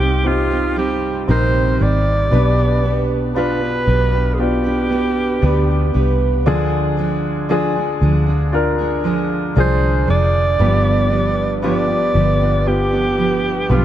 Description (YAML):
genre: pop ballad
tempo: 58 BPM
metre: 4/4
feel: straight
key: unclear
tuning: A4 = 440 Hz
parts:
  - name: breathy alto saxophone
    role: melody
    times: 0.0-13.8 s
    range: F4 to D5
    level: -20 LUFS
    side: right 1 dB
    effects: ping-pong delay
  - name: warm baby grand piano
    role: accompaniment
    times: 0.0-13.8 s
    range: G2 to Bb4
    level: -20 LUFS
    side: left 2 dB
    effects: none
  - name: fingerpicked steel-string acoustic guitar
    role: arpeggios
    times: 0.0-13.8 s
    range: G2 to B4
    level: -23 LUFS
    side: right 6 dB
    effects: none
  - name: vintage muted fingered electric bass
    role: bass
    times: 0.0-13.8 s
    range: F1 to D2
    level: -18 LUFS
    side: equal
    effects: none
room: light reverb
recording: none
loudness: -14 LUFS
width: side -11 dB against mid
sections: 0.0-13.8 A section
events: none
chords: 0.0 Cm; 2.3 G/B; 6.5 Ddim; 10.6 G7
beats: 0.26 1.29 | 2.32 3.36 4.39 5.43 | 6.46 7.50 8.53 9.56 | 10.60 11.63 12.67 13.70